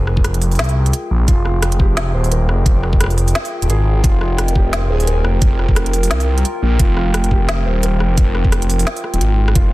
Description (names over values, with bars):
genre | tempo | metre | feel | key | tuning
half-time drum and bass | 174 BPM | 4/4 | swing 57% on 16ths, half-time | F minor | A4 = 441 Hz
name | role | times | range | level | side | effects
dark analog pad | sustained chords | 0.0-9.7 s | F4 to G5 | -26 LUFS | left 1 dB | lush chorus, sidechain pumping
felt-muted upright piano | arpeggios | 0.0-9.7 s | F4 to C5 | -28 LUFS | right 2 dB | digital delay
phased detuned saw bass | bass | 0.0-9.7 s | Eb1 to C2 | -16 LUFS | equal | phaser
organic electronic drum kit | drums | 0.1-9.6 s | hi-hat, rim click, snare drum | -23 LUFS | equal | overdrive, studio ambience
electronic kick drum | drums | 0.2-9.6 s | none | -14 LUFS | equal | studio ambience
breathy flute-like synth lead | melody | 4.9-5.2 s | Ab4 | -28 LUFS | right 2 dB | lush chorus, digital delay
room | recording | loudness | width
digital ambience | dense, heavily limited modern master | -13 LUFS | side -18 dB against mid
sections
0.0-9.7 A section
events
none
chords
0.0 Fmadd9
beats
0.24 0.59 0.94 | 1.28 1.62 1.97 2.31 | 2.66 3.00 3.35 3.69 | 4.04 4.38 4.73 5.07 | 5.42 5.76 6.11 6.45 | 6.80 7.14 7.49 7.83 | 8.18 8.52 8.87 9.21 | 9.55